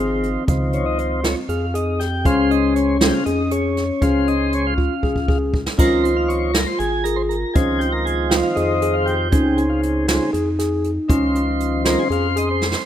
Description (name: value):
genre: progressive instrumental, band music in an uneven meter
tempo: 237 BPM (eighths)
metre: 7/8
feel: straight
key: Db lydian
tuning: A4 = 440 Hz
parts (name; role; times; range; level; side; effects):
- vibraphone with soft mallets; second line; 0.0-12.6 s; C4 to F4; -22 LUFS; left 2 dB; none
- tonewheel organ; accompaniment; 0.0-12.9 s; Db3 to F5; -22 LUFS; equal; slow rotary speaker
- mellow tine electric piano; arpeggios; 0.0-12.7 s; Db3 to Ab4; -25 LUFS; equal; none
- rubbery square bass; bass; 0.0-12.8 s; Ab1 to F2; -24 LUFS; equal; none
- jazz brush drum kit; drums; 0.2-12.9 s; hi-hat, kick drum, snare drum, splash cymbal; -21 LUFS; equal; none
room: light reverb, studio reverb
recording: rough home demo mix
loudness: -17 LUFS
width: side -10 dB against mid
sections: 0.0-12.9 A section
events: tonewheel organ solo 0.0-12.9; drum fill 4.8-5.8, 12.6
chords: 0.0 Dbmaj7; 2.3 Dbmaj9; 5.8 Dbmaj7; 9.3 Dbmaj9#11; 11.1 Dbmaj9